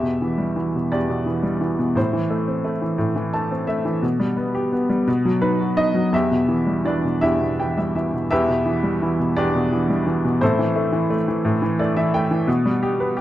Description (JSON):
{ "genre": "classical, lyrical solo piano", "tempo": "57 BPM (dotted quarters)", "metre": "6/8", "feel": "rubato", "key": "E minor", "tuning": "A4 = 440 Hz", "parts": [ { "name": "bright upright piano", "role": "solo", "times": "0.0-13.2 s", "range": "E2 to A5", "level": "-18 LUFS", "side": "equal", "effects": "none" } ], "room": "moderate concert hall reverb, RT60 1.9 s", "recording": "dark, warm production", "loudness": "-18 LUFS", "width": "side -13 dB against mid", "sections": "0.0-8.3 A section; 8.3-13.2 A section", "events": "upright piano fill 3.0-4.0, 7.2-8.3, 11.4-12.5", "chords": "0.0 Em; 2.0 Am; 4.0 G/B; 5.1 B; 6.1 Em; 10.4 Am; 12.5 G/B" }